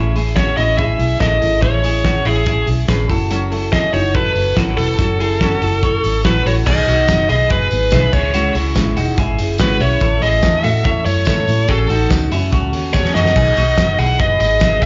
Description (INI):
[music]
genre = jangly indie pop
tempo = 143 BPM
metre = 4/4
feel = straight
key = unclear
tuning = A4 = 445 Hz
[part]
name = fingerpicked steel-string acoustic guitar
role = accompaniment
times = 0.0-14.9 s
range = A2 to A4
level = -26 LUFS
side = equal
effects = none
[part]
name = twelve-string electric guitar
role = arpeggios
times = 0.0-14.9 s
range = C#4 to C#5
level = -26 LUFS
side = equal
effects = slapback echo
[part]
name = vintage muted fingered electric bass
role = bass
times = 0.0-14.9 s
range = E1 to A2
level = -21 LUFS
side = equal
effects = none
[part]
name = loose indie drum kit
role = drums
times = 0.2-14.9 s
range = crash cymbal, hi-hat, kick drum, snare drum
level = -22 LUFS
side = equal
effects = none
[part]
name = bluesy overdriven lead guitar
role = melody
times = 0.4-14.9 s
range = G#4 to F#5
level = -20 LUFS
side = equal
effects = distortion
[part]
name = tambourine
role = percussion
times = 6.7-14.9 s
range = none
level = -37 LUFS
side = equal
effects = none
[sound]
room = light reverb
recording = live gig heard through the venue's PA, club reverb, nothing above 7.6 kHz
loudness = -15 LUFS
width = mono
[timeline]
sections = 0.0-6.7 A section; 6.7-14.9 B section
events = drum fill 12.9-13.4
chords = 0.0 Amaj7; 3.1 F#m7; 6.7 B6; 8.1 C#m; 10.0 A; 11.7 F#m/A; 13.4 B6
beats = 0.36 0.78 1.21 | 1.62 2.04 2.47 2.89 | 3.31 3.73 4.15 4.57 | 4.99 5.41 5.83 6.25 | 6.66 7.08 7.50 7.92 | 8.34 8.76 9.18 9.60 | 10.01 10.43 10.85 11.27 | 11.69 12.10 12.52 12.94 | 13.36 13.78 14.19 14.61